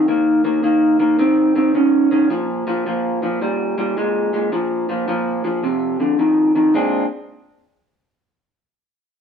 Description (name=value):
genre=blues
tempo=108 BPM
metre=4/4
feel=swing 66% on 8ths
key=unclear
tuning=A4 = 440 Hz
part: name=electric guitar through a small old amp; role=solo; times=0.0-7.0 s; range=F2 to D4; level=-15 LUFS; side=equal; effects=none
room=wet stone room reverb, RT60 1.1 s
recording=band playing live in one room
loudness=-15 LUFS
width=side -7 dB against mid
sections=0.0-6.7 A section; 6.7-9.0 B section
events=none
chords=0.1 Eb5; 2.3 Bb5; 5.6 F5; 6.7 Bb9